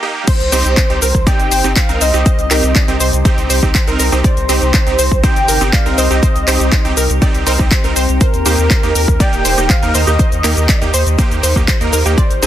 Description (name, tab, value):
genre	progressive house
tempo	121 BPM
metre	4/4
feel	straight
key	C minor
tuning	A4 = 440 Hz
part	supersaw stab	stabs	0.0-12.5 s	Bb3 to Bb4	-19 LUFS	right 3 dB	vintage 12-bit sampler grit, sidechain pumping, digital delay
part	warm velvety synth lead	melody	0.3-12.5 s	Bb4 to G5	-21 LUFS	right 1 dB	chorus, sidechain pumping, digital delay
part	airy dreamy lead	second line	0.3-12.5 s	Bb4 to G5	-24 LUFS	equal	chorus, sidechain pumping, digital delay
part	evolving wavetable pad	sustained chords	1.0-12.5 s	C3 to C5	-24 LUFS	equal	chorus, built-in reverb, sidechain pumping
part	wide unison pluck	arpeggios	0.3-12.5 s	Bb4 to D5	-22 LUFS	right 1 dB	vintage 12-bit sampler grit, sidechain pumping, digital delay
part	deep house drum kit	drums	0.3-12.5 s	crash cymbal, handclaps, hi-hat, shaker	-18 LUFS	left 2 dB	sidechain pumping on hats, sidechain pumping on perc, sidechain pumping on cymbals
part	electronic kick drum	drums	0.3-12.3 s	none	-13 LUFS	equal	none
part	round analog bass	bass	0.4-12.5 s	Eb1 to Eb2	-16 LUFS	equal	sidechain pumping
room	digital ambience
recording	dense, heavily limited modern master, high-pass filter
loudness	-10 LUFS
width	side -12 dB against mid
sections	0.3-12.5 A section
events	break 0.0; drop 0.3-12.5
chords	0.3 Cm; 8.2 Eb